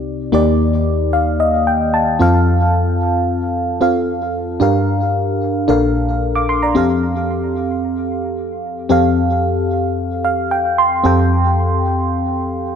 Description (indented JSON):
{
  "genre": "pop",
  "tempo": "112 BPM",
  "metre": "4/4",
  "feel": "straight",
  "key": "unclear",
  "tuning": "A4 = 440 Hz",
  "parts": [
    { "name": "mellow FM electric piano", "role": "solo", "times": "0.0-12.8 s", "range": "Bb1 to D6", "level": "-14 LUFS", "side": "equal", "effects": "chorus, phaser, ping-pong delay" }
  ],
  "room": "light reverb",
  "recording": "none",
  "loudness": "-14 LUFS",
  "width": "side -7 dB against mid",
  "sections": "0.0-6.8 A section; 6.8-12.8 B section",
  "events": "FM electric piano fill 0.9-2.5, 10.0-11.0",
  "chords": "0.3 Ebmaj7; 2.2 F; 4.6 Gm7; 5.7 Bbmaj7; 6.8 Fadd9",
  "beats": "| 0.33 0.87 1.40 1.94 | 2.48 3.01 3.55 4.08 | 4.62 5.15 5.69 6.22 | 6.76 7.30 7.83 8.37 | 8.90 9.44 9.97 10.51 | 11.05 11.58 12.12 12.65"
}